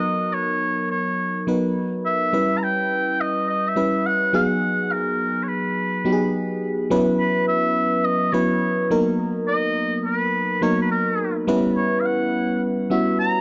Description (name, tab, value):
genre	R&B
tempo	105 BPM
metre	4/4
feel	swing 66% on 16ths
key	B major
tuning	A4 = 435 Hz
part	warm oboe	melody	0.0-13.4 s	A#4 to A#5	-26 LUFS	equal	none
part	FM electric piano	accompaniment	0.0-13.4 s	F#3 to B4	-24 LUFS	equal	chorus
room	light reverb, small room ambience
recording	dark, warm production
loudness	-22 LUFS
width	mono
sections	0.0-6.9 A section; 6.9-13.4 B section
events	none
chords	0.0 Bmaj7; 2.3 Em6; 4.3 G#m7; 6.9 F#7sus4; 8.9 Bmaj7; 11.5 Em6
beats	| 0.04 0.61 1.19 1.76 | 2.33 2.90 3.47 4.04 | 4.61 5.18 5.76 6.33 | 6.90 7.47 8.04 8.61 | 9.19 9.76 10.33 10.90 | 11.47 12.04 12.61 13.19